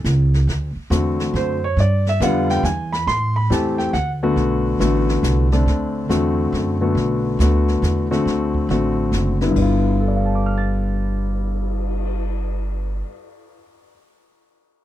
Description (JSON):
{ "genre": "jazz piano trio", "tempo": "139 BPM", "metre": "3/4", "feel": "swing 66% on 8ths", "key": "G mixolydian", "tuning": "A4 = 436 Hz", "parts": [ { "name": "upright bass", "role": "bass", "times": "0.0-13.0 s", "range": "F#1 to A2", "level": "-20 LUFS", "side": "right 1 dB", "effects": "none" }, { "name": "jazz brush drum kit", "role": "drums", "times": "0.1-12.1 s", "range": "brushed snare drum, crash cymbal, cymbal swell, hi-hat, kick drum, snare drum", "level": "-31 LUFS", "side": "left 1 dB", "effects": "none" }, { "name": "warm concert grand piano", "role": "melody", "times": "0.9-13.9 s", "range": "G2 to A6", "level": "-20 LUFS", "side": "left 2 dB", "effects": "none" } ], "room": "little or no reverb", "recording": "dry, close 1970s-style studio recording", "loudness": "-17 LUFS", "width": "side -13 dB against mid", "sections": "0.0-4.4 A section; 4.4-9.6 B section; 9.6-12.1 C section", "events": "none", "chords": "0.5 D7; 1.8 G7; 2.6 E; 3.1 Am7; 3.9 D; 4.4 Bm7; 5.7 D7; 7.0 Bm7; 8.3 D7; 9.6 G7" }